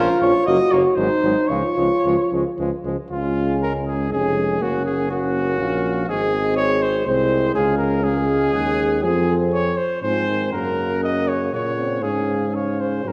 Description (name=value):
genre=classical, brass quintet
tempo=120 BPM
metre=3/4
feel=rubato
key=Db major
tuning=A4 = 440 Hz
part: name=mellow trumpet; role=melody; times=0.0-13.1 s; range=Bb4 to Ab5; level=-30 LUFS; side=equal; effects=none
part: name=clear trumpet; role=second line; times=0.0-13.1 s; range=Ab3 to Eb5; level=-26 LUFS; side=equal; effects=none
part: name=warm French horn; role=accompaniment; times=0.0-13.1 s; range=Bb3 to Gb4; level=-26 LUFS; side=equal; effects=none
part: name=warm euphonium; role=accompaniment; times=0.0-13.1 s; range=Db3 to Bb3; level=-28 LUFS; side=equal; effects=none
part: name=warm bass trombone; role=bass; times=0.0-13.1 s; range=F1 to Bb2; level=-26 LUFS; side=equal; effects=none
room=wet recital hall reverb, RT60 1.4 s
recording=dark, warm production, lossy compression artefacts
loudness=-20 LUFS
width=mono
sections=0.0-3.1 A section; 3.1-13.1 A section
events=none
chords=0.5 Gb; 1.0 Ab7; 1.5 Db; 4.6 Gb; 6.1 Ab; 7.6 Db; 9.0 Fm; 10.5 Gb; 12.0 Db/Ab